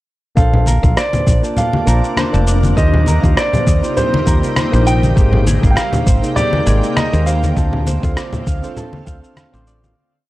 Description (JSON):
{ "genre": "sunset chillout", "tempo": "100 BPM", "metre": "4/4", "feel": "swing 55% on 16ths", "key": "Bb major", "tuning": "A4 = 440 Hz", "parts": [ { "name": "warm concert grand piano", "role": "melody", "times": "0.4-9.3 s", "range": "C5 to G5", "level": "-21 LUFS", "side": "right 1 dB", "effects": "tape echo" }, { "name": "barky tine electric piano", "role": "accompaniment", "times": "0.4-9.9 s", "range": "Ab3 to A5", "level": "-23 LUFS", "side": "equal", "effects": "auto-pan" }, { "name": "shimmering ambient pad", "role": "sustained chords", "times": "1.1-9.9 s", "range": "C3 to G5", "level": "-24 LUFS", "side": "left 1 dB", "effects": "chorus, built-in reverb" }, { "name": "Celtic harp", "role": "arpeggios", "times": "0.4-10.3 s", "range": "G4 to F5", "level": "-26 LUFS", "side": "right 2 dB", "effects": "tape echo" }, { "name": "woody fretless electric bass", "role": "bass", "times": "0.4-9.9 s", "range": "F1 to Eb2", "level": "-14 LUFS", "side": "equal", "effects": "none" }, { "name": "electronic kick drum", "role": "drums", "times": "0.4-9.2 s", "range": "none", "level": "-16 LUFS", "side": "equal", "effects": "overdrive, small room ambience" }, { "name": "electronic shaker and rim click", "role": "drums", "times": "0.4-9.9 s", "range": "none", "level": "-23 LUFS", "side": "equal", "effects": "small room ambience" }, { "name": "congas", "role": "percussion", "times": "0.5-9.9 s", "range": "none", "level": "-20 LUFS", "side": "left 1 dB", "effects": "none" } ], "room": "little or no reverb", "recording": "dry, gritty hardware recording, cassette tape", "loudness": "-12 LUFS", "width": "side -17 dB against mid", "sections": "0.4-10.0 groove", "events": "fade-out 6.8-10.0", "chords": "0.4 Bbmaj9; 2.8 Eb6; 5.2 Abmaj9; 7.6 Dm7", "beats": "| 0.37 0.97 1.57 2.17 | 2.77 3.37 3.97 4.57 | 5.17 5.77 6.37 6.97 | 7.57 8.17 8.77 9.37" }